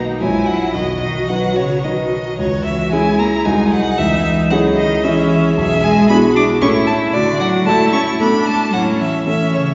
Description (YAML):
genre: quick classical-period movement for piano quartet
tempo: 113 BPM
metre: 3/4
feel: rubato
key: A major from 5.6 s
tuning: A4 = 441 Hz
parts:
  - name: rich cello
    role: second line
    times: 0.0-9.7 s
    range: C#3 to D4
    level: -21 LUFS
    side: equal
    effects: none
  - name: rich viola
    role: accompaniment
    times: 0.0-9.7 s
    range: C#4 to G#4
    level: -24 LUFS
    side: equal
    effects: none
  - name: warm grand piano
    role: accompaniment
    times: 0.0-9.7 s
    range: A#1 to C#5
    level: -20 LUFS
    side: equal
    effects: none
  - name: clear violin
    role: melody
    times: 0.2-9.6 s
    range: C#5 to D6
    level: -22 LUFS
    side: equal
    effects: none
room: wet scoring stage reverb, RT60 1.9 s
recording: recorded in a church or concert hall, nothing above 7.5 kHz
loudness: -15 LUFS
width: mono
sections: 0.0-9.7 A section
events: none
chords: 0.2 F#7/A#; 0.7 B; 2.4 C#m; 3.4 G#7/B#; 4.0 C#m; 5.6 E7/B; 6.6 A; 7.1 D/A; 8.7 A